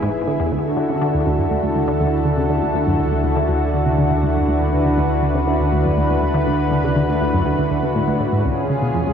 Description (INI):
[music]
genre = ambient, sequencer-driven space music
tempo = 121 BPM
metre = 4/4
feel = straight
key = unclear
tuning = A4 = 440 Hz
[part]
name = lush unison pad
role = sustained chords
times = 0.0-9.1 s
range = D3 to B4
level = -19 LUFS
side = equal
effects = chorus, shimmer reverb
[part]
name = tight sequenced synth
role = riff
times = 0.0-9.1 s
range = C#2 to D3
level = -21 LUFS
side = equal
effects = chorus, ping-pong delay
[part]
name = warm sub bass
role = bass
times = 0.0-9.1 s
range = E1 to D2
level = -24 LUFS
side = equal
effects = none
[sound]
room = wet cathedral reverb, RT60 4.8 s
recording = in a vast, echoing space, cassette tape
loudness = -16 LUFS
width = side -8 dB against mid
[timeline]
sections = 0.0-9.1 A section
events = none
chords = 0.0 E; 0.5 Dadd9; 8.4 C#